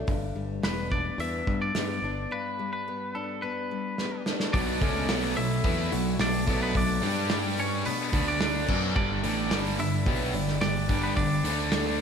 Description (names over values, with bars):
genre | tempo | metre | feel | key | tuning
quiet-loud alternative rock | 108 BPM | 4/4 | straight | unclear | A4 = 442 Hz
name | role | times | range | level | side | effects
fingerpicked steel-string acoustic guitar | arpeggios | 0.0-12.0 s | G2 to D5 | -34 LUFS | left 5 dB | slapback echo
modern bright picked electric bass | bass | 0.0-12.0 s | E1 to G2 | -33 LUFS | equal | none
loose indie drum kit | drums | 0.1-11.9 s | crash cymbal, hi-hat, kick drum, snare drum | -30 LUFS | right 1 dB | none
twangy electric guitar | melody | 0.6-12.0 s | B3 to E5 | -32 LUFS | equal | slapback echo
distorted electric guitar | riff | 4.5-12.0 s | G2 to G4 | -31 LUFS | right 11 dB | distortion
thick fuzz guitar | riff | 4.5-12.0 s | G2 to G4 | -32 LUFS | left 10 dB | distortion
room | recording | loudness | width
moderate lush hall reverb, RT60 2.0 s, small room ambience | big arena sound | -25 LUFS | side -7 dB against mid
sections
0.0-4.5 A section; 4.5-12.0 B section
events
break 2.3-4.5; drum fill 4.0-4.5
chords
0.1 G; 4.5 Bm7; 7.0 G5; 7.9 N.C.; 8.1 D5; 8.7 Bm; 9.0 G5; 11.5 D5